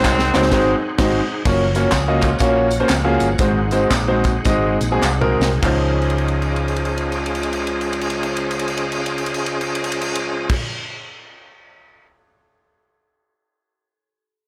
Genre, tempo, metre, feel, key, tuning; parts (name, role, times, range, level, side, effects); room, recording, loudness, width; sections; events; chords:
uptempo gospel; 96-128 BPM; 4/4; swing 63% on 8ths; Db major; A4 = 441 Hz
warm horn section; melody; 0.0-1.0 s; Eb3 to C4; -25 LUFS; equal
warm concert grand piano; accompaniment; 0.0-10.6 s; Db2 to Eb5; -22 LUFS; equal
overdriven tonewheel organ; sustained chords; 0.0-10.6 s; F3 to Gb5; -27 LUFS; equal; slow rotary speaker, chorus vibrato
hollow-body short-scale fingered electric bass; bass; 0.0-10.6 s; Gb1 to Db2; -25 LUFS; equal; transformer saturation
crisp fusion drum kit; drums; 0.0-12.1 s; crash cymbal, hi-hat, kick drum, ride cymbal, snare drum, toms; -26 LUFS; equal
handclaps and tambourine; percussion; 0.0-10.6 s; -29 LUFS; equal
clean electric guitar; second line; 1.9-3.2 s; F3 to Ab4; -34 LUFS; equal
light reverb; blown-out, overdriven recording, overdrive; -19 LUFS; mono
0.0-1.5 A section; 1.5-5.6 B section; 5.6-10.6 C section
drum fill 0.0-1.5, 5.0-5.6, 5.9-10.5; band accent 0.5-1.5; slowing down 1.5-5.6
0.0 Ab7; 1.5 Gbmaj7; 3.4 Ab7; 5.6 Dbmaj9